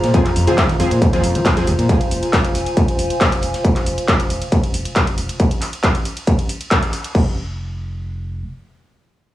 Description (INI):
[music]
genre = driving peak-time techno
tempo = 137 BPM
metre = 4/4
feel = straight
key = F minor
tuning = A4 = 440 Hz
[part]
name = overdriven acid bass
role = riff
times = 0.0-1.9 s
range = Eb2 to F3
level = -20 LUFS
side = equal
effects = distortion, cassette tape, sidechain pumping, tape echo
[part]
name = warm sub bass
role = bass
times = 0.0-8.4 s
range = F1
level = -26 LUFS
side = equal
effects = tube saturation, sidechain pumping, low-pass filter
[part]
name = swarming drone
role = drone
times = 0.0-3.7 s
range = F3 to F4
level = -33 LUFS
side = equal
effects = none
[part]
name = crisp fusion drum kit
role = drums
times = 0.0-3.6 s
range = hi-hat, snare drum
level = -35 LUFS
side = right 1 dB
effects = none
[part]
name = techno drum kit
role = drums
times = 0.0-7.2 s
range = crash cymbal, handclaps, hi-hat, ride cymbal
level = -23 LUFS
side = equal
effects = overdrive
[part]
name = warbly tape-like pad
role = texture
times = 0.0-3.7 s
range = F4 to Bb5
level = -24 LUFS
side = equal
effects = chorus, built-in reverb, sidechain pumping
[part]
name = supersaw stab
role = stabs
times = 0.1-1.7 s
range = F3 to Ab4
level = -22 LUFS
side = left 1 dB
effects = wide subtle chorus, sidechain pumping, tape echo
[part]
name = electronic kick drum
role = drums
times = 0.1-7.2 s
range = none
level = -17 LUFS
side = equal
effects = distortion, overdrive
[sound]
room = light reverb, digital ambience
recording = home recording on cassette, small room reverb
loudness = -15 LUFS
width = side -14 dB against mid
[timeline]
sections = 0.0-7.1 A section; 7.1-9.3 B section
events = drop 0.0-7.1; band accent 6.7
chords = 0.0 Fm; 7.1 N.C.